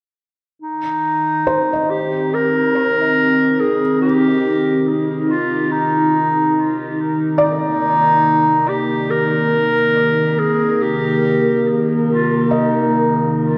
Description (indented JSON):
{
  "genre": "ambient",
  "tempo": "71 BPM",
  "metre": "4/4",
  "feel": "straight",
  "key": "C minor",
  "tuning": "A4 = 440 Hz",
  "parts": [
    { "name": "warm clarinet", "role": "melody", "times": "0.6-13.6 s", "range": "Eb4 to Bb4", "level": "-19 LUFS", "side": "equal", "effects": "dub echo" },
    { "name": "warbly tape-like pad", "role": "sustained chords", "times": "1.2-13.6 s", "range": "Eb3 to Bb4", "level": "-20 LUFS", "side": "equal", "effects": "chorus, built-in reverb" },
    { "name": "analog drone", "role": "drone", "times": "2.8-13.6 s", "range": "C3", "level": "-34 LUFS", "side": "equal", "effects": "chorus" },
    { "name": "felt-muted upright piano", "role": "arpeggios", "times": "1.5-13.6 s", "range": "C5 to Eb5", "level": "-26 LUFS", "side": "equal", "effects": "dub echo" }
  ],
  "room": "wet plate reverb, RT60 2.9 s",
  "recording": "echo-heavy mix",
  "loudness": "-17 LUFS",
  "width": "mono",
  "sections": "0.6-13.6 A section",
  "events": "fade-in on synth drone 0.6-13.6; filter sweep on ambient pad 0.6-13.6",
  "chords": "0.6 Cm9",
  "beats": "| 0.60 1.46 2.31 3.17 | 4.01 4.85 5.70 6.54 | 7.39 8.24 9.09 9.95 | 10.80 11.64 12.50 13.37"
}